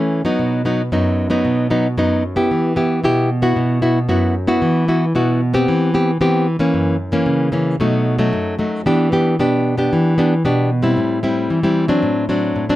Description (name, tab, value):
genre	samba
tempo	114 BPM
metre	4/4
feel	straight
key	E minor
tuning	A4 = 439 Hz
part	nylon-string guitar	solo	0.0-12.8 s	F#2 to G4	-14 LUFS	equal	none
room	light reverb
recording	none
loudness	-14 LUFS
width	side -15 dB against mid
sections	0.0-11.0 A section; 11.0-12.8 B section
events	none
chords	0.4 B; 2.5 Em; 3.6 Bsus4; 4.6 Esus2; 5.7 Cmaj7/E; 6.7 F#7; 7.8 B7; 8.9 Em7; 11.0 Am7; 12.0 D7/A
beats	| 0.40 0.92 1.45 1.98 | 2.51 3.04 3.57 4.10 | 4.62 5.15 5.68 6.21 | 6.74 7.27 7.80 8.32 | 8.85 9.38 9.91 10.44 | 10.97 11.50 12.03 12.56